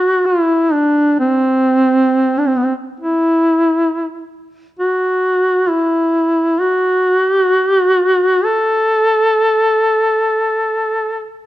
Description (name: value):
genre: caucasian folk, Caucasian lament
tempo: free time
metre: none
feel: none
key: A dorian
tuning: A4 = 440 Hz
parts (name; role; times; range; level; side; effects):
- warm duduk; solo; 0.0-11.3 s; B3 to A4; -12 LUFS; equal; none
room: light reverb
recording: dark, warm production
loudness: -12 LUFS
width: side -15 dB against mid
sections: 0.0-11.5 A section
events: none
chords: none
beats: free time